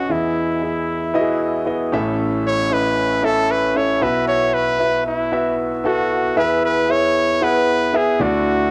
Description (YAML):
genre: pop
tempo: 115 BPM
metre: 4/4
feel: straight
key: unclear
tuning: A4 = 440 Hz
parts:
  - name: brilliant trumpet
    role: melody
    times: 0.0-8.7 s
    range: E4 to C#5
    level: -22 LUFS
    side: equal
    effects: cassette tape
  - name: warm concert grand piano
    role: accompaniment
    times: 0.0-8.7 s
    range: A1 to F#5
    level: -21 LUFS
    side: equal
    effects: cassette tape
room: moderate spring reverb, RT60 1.4 s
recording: home recording on cassette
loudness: -19 LUFS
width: mono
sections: 0.0-6.4 A section; 6.4-8.7 B section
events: none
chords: 0.1 Emaj7; 1.9 A; 4.0 Bsus4; 6.4 E; 8.2 Dadd9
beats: | 0.10 0.62 1.14 1.67 | 2.19 2.71 3.23 3.76 | 4.28 4.80 5.32 5.84 | 6.37 6.89 7.41 7.93 | 8.46